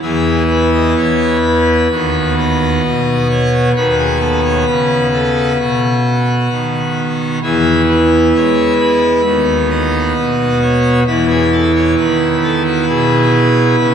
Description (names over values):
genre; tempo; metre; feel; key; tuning
classical, chorale-style piece for pipe organ; 66 BPM; 4/4; rubato; E major; A4 = 435 Hz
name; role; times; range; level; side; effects
pipe organ, full organ; solo; 0.0-13.9 s; D#2 to D#5; -11 LUFS; equal; none
room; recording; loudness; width
wet cathedral reverb, RT60 4.9 s; none; -11 LUFS; side -8 dB against mid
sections
0.0-13.9 A section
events
none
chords
0.0 E5; 1.9 B/D#; 7.4 E; 9.3 B/D#; 11.1 E